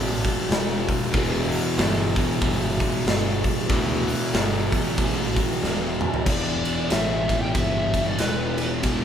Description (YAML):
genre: stoner and doom metal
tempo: 94 BPM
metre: 4/4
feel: swing 60% on 8ths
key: E minor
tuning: A4 = 441 Hz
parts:
  - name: overdriven electric guitar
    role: riff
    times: 0.0-6.3 s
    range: E2 to E3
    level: -29 LUFS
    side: right 1 dB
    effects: none
  - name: thick fuzz guitar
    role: riff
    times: 0.0-9.0 s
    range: E2 to E3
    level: -28 LUFS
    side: left 5 dB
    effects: distortion
  - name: thick fuzz guitar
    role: riff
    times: 0.0-9.0 s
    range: E2 to E3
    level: -31 LUFS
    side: right 8 dB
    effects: distortion
  - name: fuzz picked electric bass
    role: bass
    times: 0.0-9.0 s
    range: E1 to D2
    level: -29 LUFS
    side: equal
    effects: overdrive
  - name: big rock drum kit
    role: drums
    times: 0.2-9.0 s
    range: crash cymbal, hi-hat, kick drum, ride cymbal, snare drum, toms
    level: -24 LUFS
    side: equal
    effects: none
  - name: fuzz lead guitar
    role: melody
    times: 6.3-8.7 s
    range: B4 to G5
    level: -28 LUFS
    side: left 2 dB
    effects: wah, distortion
room: moderate large studio reverb, RT60 1.1 s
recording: band playing live in one room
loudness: -20 LUFS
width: side -8 dB against mid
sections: 0.0-6.3 A section; 6.3-9.0 B section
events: drum fill 5.6-6.3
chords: 0.0 Em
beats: 0.50 | 1.14 1.78 2.42 3.06 | 3.70 4.34 4.98 5.62 | 6.26 6.91 7.55 8.19 | 8.83